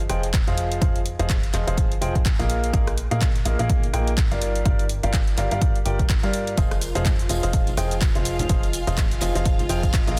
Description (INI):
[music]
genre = piano house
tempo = 125 BPM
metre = 4/4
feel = swing 58% on 16ths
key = F dorian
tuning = A4 = 440 Hz
[part]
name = plucky analog bass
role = bass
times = 0.0-10.2 s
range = F1 to G2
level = -28 LUFS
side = equal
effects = sidechain pumping
[part]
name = garage drum kit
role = drums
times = 0.0-10.2 s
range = handclaps, hi-hat, rim click, shaker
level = -33 LUFS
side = equal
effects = none
[part]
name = deep dark ambient pad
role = texture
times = 1.1-10.2 s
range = Eb4 to Ab5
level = -41 LUFS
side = equal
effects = none
[part]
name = clear baby grand piano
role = riff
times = 0.1-10.2 s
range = F3 to G5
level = -30 LUFS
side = equal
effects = vintage 12-bit sampler grit, sidechain pumping, dub echo
[part]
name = electronic kick drum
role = drums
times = 0.3-10.0 s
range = none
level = -24 LUFS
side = equal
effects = none
[part]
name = string machine, violins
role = sustained chords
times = 6.6-10.2 s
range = F4 to F5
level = -36 LUFS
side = equal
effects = ensemble chorus, sidechain pumping
[part]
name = tambourine and congas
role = percussion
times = 6.6-10.2 s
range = none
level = -37 LUFS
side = equal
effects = none
[sound]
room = digital ambience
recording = dense, heavily limited modern master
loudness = -22 LUFS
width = mono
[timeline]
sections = 0.0-10.2 A section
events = none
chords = 0.0 Fm7; 2.5 Bb7sus4; 4.4 Gm7; 6.6 Fm7